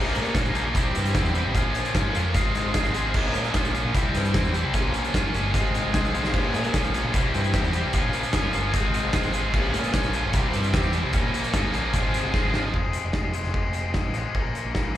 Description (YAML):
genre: indie rock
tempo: 150 BPM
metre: 4/4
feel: straight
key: F harmonic minor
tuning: A4 = 440 Hz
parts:
  - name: string machine, full ensemble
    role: sustained chords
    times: 0.0-12.7 s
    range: G4 to Db6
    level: -38 LUFS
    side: right 1 dB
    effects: none
  - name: crunchy overdriven guitar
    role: riff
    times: 0.0-15.0 s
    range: F3 to F4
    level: -28 LUFS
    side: left 7 dB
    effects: spring reverb, slapback echo
  - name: scooped high-gain guitar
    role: riff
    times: 0.0-12.7 s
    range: Bb2 to Ab4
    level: -28 LUFS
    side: right 7 dB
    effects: distortion, lush chorus, digital delay
  - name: growling picked electric bass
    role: bass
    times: 0.0-15.0 s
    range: F1 to Bb2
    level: -28 LUFS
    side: equal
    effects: overdrive
  - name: loose indie drum kit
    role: drums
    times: 0.1-14.8 s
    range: crash cymbal, hi-hat, kick drum, snare drum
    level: -26 LUFS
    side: equal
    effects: none
room: small room ambience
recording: live gig heard through the venue's PA, club reverb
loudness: -21 LUFS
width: side -12 dB against mid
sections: 0.0-12.7 A section; 12.7-15.0 B section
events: drum fill 12.3-12.7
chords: 0.0 Bbm; 0.8 C; 1.6 Bbm; 2.4 Fm/Ab; 3.2 Bbm; 4.0 C; 4.8 Bbm; 5.5 Fm/Ab; 6.3 Bbm; 7.1 C; 7.9 Bbm; 8.7 Fm/Ab; 9.5 Bbm; 10.3 C; 11.1 Bbm; 11.9 Fm/Ab; 12.7 Fm; 14.4 Bbm